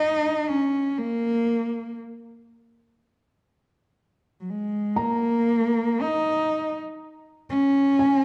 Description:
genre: acoustic folk-pop ballad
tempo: 60 BPM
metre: 4/4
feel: straight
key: unclear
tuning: A4 = 438 Hz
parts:
  - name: warm cello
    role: melody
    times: 0.0-8.2 s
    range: Gb3 to Eb4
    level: -24 LUFS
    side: equal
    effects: none
  - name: felt-muted upright piano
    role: arpeggios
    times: 5.0-8.2 s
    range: Ab5 to Bb5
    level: -33 LUFS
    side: equal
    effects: none
room: wet recital hall reverb, RT60 1.4 s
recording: dark, warm production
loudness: -24 LUFS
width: mono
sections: 0.0-7.0 A section; 7.0-8.2 B section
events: none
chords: 0.0 N.C.; 7.0 Bbm7

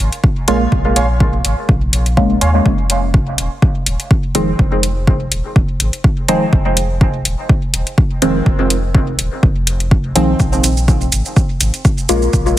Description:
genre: dub techno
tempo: 124 BPM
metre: 4/4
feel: swing 54% on 16ths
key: F minor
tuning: A4 = 444 Hz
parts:
  - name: pure sine sub bass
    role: bass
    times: 0.0-12.6 s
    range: Eb1 to Eb2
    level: -18 LUFS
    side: equal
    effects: sidechain pumping
  - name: electronic hi-hat and shaker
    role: drums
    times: 0.1-12.6 s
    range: none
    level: -18 LUFS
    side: left 1 dB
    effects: overdrive
  - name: electronic kick drum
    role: drums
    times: 0.2-12.4 s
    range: none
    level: -14 LUFS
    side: equal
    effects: overdrive
  - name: wavetable chord stab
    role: riff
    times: 0.5-2.5 s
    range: Db5 to C6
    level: -23 LUFS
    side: right 3 dB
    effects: sidechain pumping, dub echo
  - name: deep mellow chord stab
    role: stabs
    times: 0.5-12.2 s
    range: Eb3 to F4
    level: -18 LUFS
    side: equal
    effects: chorus, phaser, dub echo
room: light reverb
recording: heavily compressed radio sound, multiband compression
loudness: -12 LUFS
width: side -14 dB against mid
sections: 0.0-2.7 A section; 2.7-12.6 A section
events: filter sweep on synth stab 0.0-2.7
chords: 0.0 Bbm7; 2.7 Fm7; 10.4 Bbm7

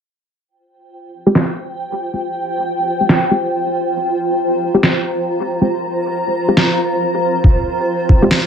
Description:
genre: deep dubstep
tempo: 138 BPM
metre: 4/4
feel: swing 60% on 16ths, half-time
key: F minor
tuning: A4 = 439 Hz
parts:
  - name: granular cloud pad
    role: sustained chords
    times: 1.4-8.5 s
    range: F4 to Bb5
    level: -18 LUFS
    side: equal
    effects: built-in reverb
  - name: filtered dub chord stab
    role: stabs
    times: 1.3-8.4 s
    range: Ab3 to G4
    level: -17 LUFS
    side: left 1 dB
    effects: chorus, dub echo
  - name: electronic snare drum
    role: drums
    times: 1.4-8.4 s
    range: none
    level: -14 LUFS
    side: right 1 dB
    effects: overdrive, low-pass filter on snare, low-pass filter on room
  - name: electronic kick drum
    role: drums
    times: 7.4-8.2 s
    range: none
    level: -11 LUFS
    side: equal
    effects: none
room: light reverb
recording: none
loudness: -14 LUFS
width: side -8 dB against mid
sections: 0.5-8.5 A section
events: filter sweep on drum 0.5-8.5; filter sweep on synth stab 0.5-8.5; filter sweep on ambient pad 0.5-8.5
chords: 0.5 Fmadd9

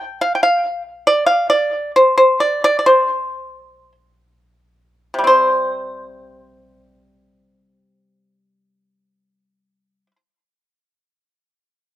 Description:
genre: chinese traditional, Chinese solo plucked strings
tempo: 43-72 BPM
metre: 2/4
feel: rubato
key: unclear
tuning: A4 = 440 Hz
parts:
  - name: pipa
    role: solo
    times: 0.0-10.2 s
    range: C3 to G5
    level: -13 LUFS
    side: equal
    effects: slapback echo
room: little or no reverb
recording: recorded outdoors, with no room sound, faint mains hum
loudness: -13 LUFS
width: side -13 dB against mid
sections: 0.0-5.3 A section; 5.3-10.7 B section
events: slowing down 1.0-5.3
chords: none

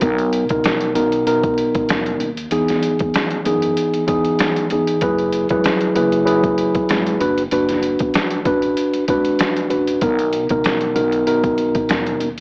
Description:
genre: hip hop, boom-bap hip-hop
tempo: 96 BPM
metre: 4/4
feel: swing 55% on 16ths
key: B major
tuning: A4 = 440 Hz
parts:
  - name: mellow tine electric piano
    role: accompaniment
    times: 0.0-12.3 s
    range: B2 to B4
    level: -19 LUFS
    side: equal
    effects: cassette tape, high-pass filter, low-pass filter
  - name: upright bass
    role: bass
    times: 0.0-12.4 s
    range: F#1 to F#2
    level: -30 LUFS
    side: equal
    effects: none
  - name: boom bap sampler-style drum kit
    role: drums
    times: 0.0-12.4 s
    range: hi-hat, kick drum, snare drum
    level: -25 LUFS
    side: equal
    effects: overdrive
room: moderate studio reverb, RT60 0.6 s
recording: vinyl crackle, AM radio sound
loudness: -18 LUFS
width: mono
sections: 0.0-12.4 A section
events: none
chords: 0.0 Bmaj7; 2.5 Emaj7; 5.0 F#9sus4; 7.2 D6/F#; 10.0 Bmaj7

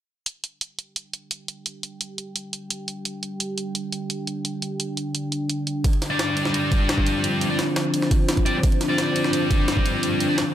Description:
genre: dark technical drum and bass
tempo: 172 BPM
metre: 4/4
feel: straight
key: unclear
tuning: A4 = 439 Hz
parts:
  - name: dark analog pad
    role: sustained chords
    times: 1.7-10.5 s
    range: D4 to G5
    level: -26 LUFS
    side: equal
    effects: chorus, sidechain pumping
  - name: electronic hi-hat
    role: drums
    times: 0.3-10.4 s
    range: none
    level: -28 LUFS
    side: right 2 dB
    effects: none
  - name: electronic kick drum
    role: drums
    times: 5.8-9.8 s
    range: none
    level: -20 LUFS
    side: equal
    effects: overdrive
  - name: jungle sampler-style drum kit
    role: drums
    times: 5.8-10.5 s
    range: ride cymbal, snare drum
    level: -29 LUFS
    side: equal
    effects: high-pass filter on cymbals, high-pass filter on snare, high-pass filter on room
  - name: scooped high-gain guitar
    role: stabs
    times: 6.1-10.4 s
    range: G3 to D5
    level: -25 LUFS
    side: left 1 dB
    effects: distortion, digital delay
room: light reverb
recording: none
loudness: -22 LUFS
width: side -11 dB against mid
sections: 0.3-10.5 A section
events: filter sweep on analog synth pad 0.3-10.5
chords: 0.3 G5

